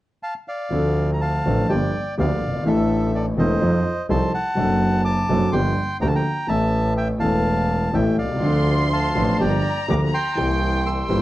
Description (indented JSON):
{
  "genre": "tango",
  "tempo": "124 BPM",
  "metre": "4/4",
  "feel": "rubato",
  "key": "D minor",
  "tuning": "A4 = 441 Hz",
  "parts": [
    { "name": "bandoneon", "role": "melody", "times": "0.2-11.2 s", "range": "A4 to E6", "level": "-25 LUFS", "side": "equal", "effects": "none" },
    { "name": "warm grand piano", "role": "accompaniment", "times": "0.7-11.2 s", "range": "E1 to A4", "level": "-22 LUFS", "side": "equal", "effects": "none" },
    { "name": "clear double bass", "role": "bass", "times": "0.7-11.2 s", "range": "E1 to F2", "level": "-23 LUFS", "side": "right 1 dB", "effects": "none" },
    { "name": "warm chamber violin section", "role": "second line", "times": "8.4-11.2 s", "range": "G5 to C6", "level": "-27 LUFS", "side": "equal", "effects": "none" }
  ],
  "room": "moderate studio reverb, RT60 0.7 s",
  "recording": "worn, warbling old tape, cassette tape, warbly pitch drift",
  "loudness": "-18 LUFS",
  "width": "side -16 dB against mid",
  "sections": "0.7-11.2 A section",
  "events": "none",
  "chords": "0.0 Dm; 0.7 Dm7; 1.7 Gm7; 2.7 Asus4; 3.6 F7; 4.6 D7/F#; 5.5 Gm7; 6.5 A; 8.4 Dm7; 9.4 Gm7; 10.4 C7"
}